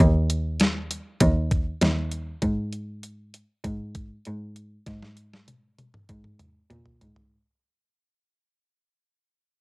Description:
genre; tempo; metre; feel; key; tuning
rock, shoegaze and dream pop; 98 BPM; 4/4; straight; unclear; A4 = 442 Hz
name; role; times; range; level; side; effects
rich cello; bass; 0.0-7.3 s; Eb2 to Bb2; -24 LUFS; equal; none
detuned 8-bit digital drum machine; drums; 0.0-7.3 s; hi-hat, kick drum, snare drum, toms; -24 LUFS; equal; overdrive, cassette tape
room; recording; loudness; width
digital ambience; home recording on cassette; -23 LUFS; side -25 dB against mid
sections
0.0-7.3 A section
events
fade-out 0.0-7.3; drum fill 4.9-7.3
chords
none

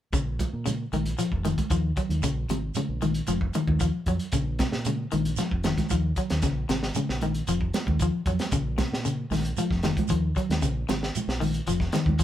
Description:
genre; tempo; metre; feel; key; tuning
afrobeat; 114 BPM; 4/4; straight; Bb minor; A4 = 442 Hz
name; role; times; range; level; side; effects
electric guitar at the edge of break-up; arpeggios; 0.1-12.2 s; C3 to Gb3; -28 LUFS; left 3 dB; none
fingered electric bass; bass; 0.1-12.2 s; F1 to Bb2; -29 LUFS; equal; none
crunchy breakbeat drum kit; drums; 0.1-12.2 s; hi-hat, kick drum, snare drum; -30 LUFS; right 1 dB; none
shekere; percussion; 0.1-12.2 s; none; -35 LUFS; right 3 dB; none
congas; percussion; 0.4-12.2 s; none; -32 LUFS; right 5 dB; none
room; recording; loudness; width
moderate studio reverb, RT60 0.6 s; band playing live in one room; -24 LUFS; side -12 dB against mid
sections
0.1-12.2 A section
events
none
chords
0.1 Bbm; 1.2 Ebmadd9/F; 2.2 Bbm9; 3.3 Ebmadd9/F; 4.3 Bbmadd9; 5.4 Ebmadd9/F; 6.4 Bbm9; 7.5 Ebmadd9/F; 8.5 Bbmadd9; 9.6 Ebmadd9/F; 10.6 Bbm9; 11.7 F7(no3)

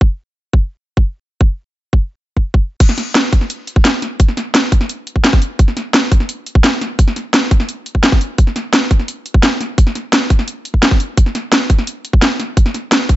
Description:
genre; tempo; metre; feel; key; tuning
drum and bass; 172 BPM; 4/4; straight; none; none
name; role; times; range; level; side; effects
electronic kick drum; drums; 0.0-13.2 s; none; -11 LUFS; equal; none
drum and bass drum kit; drums; 2.8-13.2 s; crash cymbal, hi-hat, snare drum; -15 LUFS; equal; overdrive
room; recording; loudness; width
little or no reverb; nothing above 7.8 kHz; -12 LUFS; side -16 dB against mid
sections
0.0-2.8 A section; 2.8-13.2 B section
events
drop 2.8-13.2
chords
none

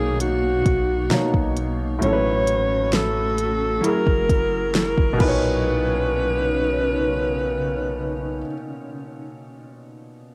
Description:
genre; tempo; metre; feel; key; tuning
contemporary R&B; 66 BPM; 4/4; straight; B major; A4 = 440 Hz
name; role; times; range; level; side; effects
warm alto saxophone; melody; 0.0-8.4 s; F#4 to C#5; -25 LUFS; equal; cassette tape
warm concert grand piano; accompaniment; 0.0-10.3 s; A2 to C#5; -28 LUFS; equal; cassette tape
granular cloud pad; sustained chords; 0.0-8.4 s; B2 to C#5; -32 LUFS; equal; built-in reverb, sidechain pumping, cassette tape
long sustained 808-style bass; bass; 0.0-8.4 s; F#1 to B2; -30 LUFS; equal; none
soft round pluck; texture; 0.0-8.4 s; F#5 to B5; -39 LUFS; equal; chorus, cassette tape, tape echo
smooth R&B drum kit; drums; 0.2-5.4 s; crash cymbal, hi-hat, kick drum, snare drum; -24 LUFS; equal; cassette tape
room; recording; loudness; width
digital ambience; home recording on cassette; -21 LUFS; mono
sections
0.0-5.7 A section; 5.7-9.3 B section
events
none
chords
0.0 Bmaj9; 2.0 A69; 3.8 F#9; 5.2 Bmaj9

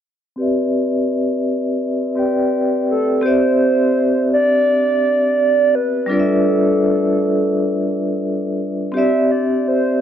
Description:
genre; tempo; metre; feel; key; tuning
hip hop; 84 BPM; 4/4; swing 56% on 16ths; C major; A4 = 436 Hz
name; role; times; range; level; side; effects
vibraphone with medium hard mallets; accompaniment; 0.4-10.0 s; G3 to G5; -17 LUFS; left 1 dB; low-pass filter, plate reverb
hollow clarinet-like synth lead; melody; 2.9-10.0 s; A4 to E5; -17 LUFS; right 2 dB; chorus, low-pass filter, plate reverb
room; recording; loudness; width
wet small room reverb, RT60 0.5 s; low-pass filter; -15 LUFS; side -9 dB against mid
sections
0.4-3.2 A section; 3.2-10.0 B section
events
filter sweep 0.4-3.2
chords
0.4 Cmaj9; 3.2 Cadd9; 6.1 G13; 8.9 Cadd9

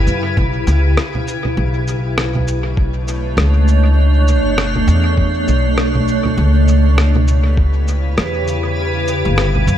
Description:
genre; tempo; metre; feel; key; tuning
ambient dub; 100 BPM; 4/4; swing 59% on 16ths; B minor; A4 = 445 Hz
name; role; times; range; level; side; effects
granular cloud pad; sustained chords; 0.0-9.8 s; B2 to C#5; -18 LUFS; right 1 dB; built-in reverb
upright bass; bass; 0.0-9.8 s; F#1 to F#2; -14 LUFS; equal; none
electronic shaker, rim click and congas; drums; 0.1-9.8 s; none; -21 LUFS; right 1 dB; dub echo
electronic kick drum; drums; 0.4-7.7 s; none; -16 LUFS; equal; none
room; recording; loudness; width
light reverb, digital ambience; none; -13 LUFS; side -10 dB against mid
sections
0.0-9.8 A section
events
none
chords
0.0 C#m7b5; 1.6 Bm9; 6.4 C#m7b5

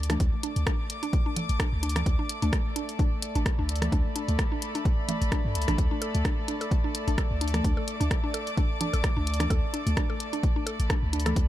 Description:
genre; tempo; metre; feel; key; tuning
minimal techno; 129 BPM; 4/4; swing 55% on 16ths; unclear; A4 = 440 Hz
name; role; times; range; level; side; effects
punchy sub bass; bass; 0.0-11.5 s; A1 to G2; -27 LUFS; equal; sidechain pumping
punchy analog drum machine; drums; 0.0-11.5 s; hi-hat, rim click; -33 LUFS; equal; none
dark chamber string section; texture; 0.0-11.5 s; A3 to D6; -34 LUFS; left 1 dB; sidechain pumping
mallet-like synth pluck; riff; 0.1-11.3 s; A3 to A4; -35 LUFS; equal; chorus, cassette tape, sidechain pumping, dub echo
congas; percussion; 0.1-11.3 s; none; -34 LUFS; equal; ping-pong delay
electronic kick drum; drums; 0.2-11.5 s; none; -27 LUFS; equal; none
room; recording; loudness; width
little or no reverb; none; -25 LUFS; side -14 dB against mid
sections
0.0-11.5 A section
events
none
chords
0.0 D5

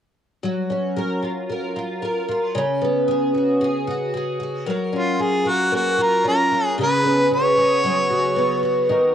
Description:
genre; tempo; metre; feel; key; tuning
acoustic pop; 114 BPM; 4/4; swing 55% on 16ths; F# major; A4 = 440 Hz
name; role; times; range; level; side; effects
picked twelve-string acoustic guitar; accompaniment; 0.4-9.1 s; C#3 to A#4; -20 LUFS; equal; double-tracked left and right, cassette tape
warm harmonica; melody; 5.0-8.6 s; E#4 to C#5; -19 LUFS; equal; tape echo
room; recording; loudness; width
light reverb, studio ambience; home recording on cassette; -18 LUFS; side -9 dB against mid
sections
0.4-4.7 A section; 4.7-9.1 B section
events
none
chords
0.4 F#maj7; 2.5 C#7sus4; 4.7 F#maj7; 6.8 C#7sus4

